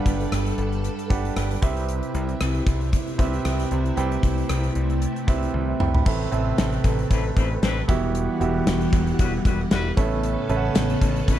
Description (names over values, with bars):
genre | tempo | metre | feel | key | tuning
1980s-style pop | 115 BPM | 4/4 | swing 55% on 16ths | unclear | A4 = 438 Hz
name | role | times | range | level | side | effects
warm concert grand piano | accompaniment | 0.0-11.4 s | G2 to B5 | -27 LUFS | right 6 dB | none
string machine, violins | sustained chords | 0.0-11.4 s | C3 to F#5 | -28 LUFS | left 2 dB | ensemble chorus
modern bright picked electric bass | bass | 0.1-11.4 s | E1 to C2 | -25 LUFS | left 1 dB | none
gated 80s drum kit | drums | 0.1-11.4 s | crash cymbal, hi-hat, kick drum, rim click, snare drum, toms | -24 LUFS | left 1 dB | none
clear horn section | stabs | 7.1-11.4 s | E3 to B4 | -29 LUFS | left 5 dB | none
group handclap | percussion | 10.8-10.9 s | none | -36 LUFS | left 13 dB | none
room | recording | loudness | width
little or no reverb | none | -20 LUFS | side -12 dB against mid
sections
0.0-6.1 A section; 6.1-11.4 B section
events
grand piano fill 5.0-6.1; drum fill 5.5-6.1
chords
0.0 Gmaj7; 1.6 Cmaj7; 6.1 Amadd9; 7.9 Emadd9; 10.0 Aadd9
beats
0.32 0.84 1.37 | 1.89 2.41 2.93 3.45 | 3.97 4.50 5.02 5.54 | 6.06 6.58 7.11 7.63 | 8.15 8.67 9.19 9.71 | 10.23 10.76 11.28